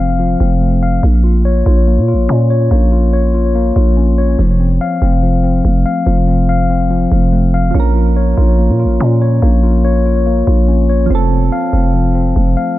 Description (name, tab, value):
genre	hip hop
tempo	143 BPM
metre	4/4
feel	half-time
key	Bb harmonic minor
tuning	A4 = 439 Hz
part	mellow tine electric piano	arpeggios	0.0-12.8 s	F3 to F5	-15 LUFS	left 3 dB	low-pass filter, digital delay
part	growling 808-style bass	bass	0.0-12.6 s	F1 to Bb2	-12 LUFS	equal	none
part	soft electric-piano-like synth keys	accompaniment	7.7-12.8 s	F3 to Bb4	-21 LUFS	right 10 dB	chorus, low-pass filter
room	digital ambience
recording	dark, warm production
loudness	-10 LUFS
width	side -16 dB against mid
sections	0.0-12.8 A section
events	none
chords	0.0 F; 1.0 Bbm; 4.4 F; 7.7 Bbm; 11.1 F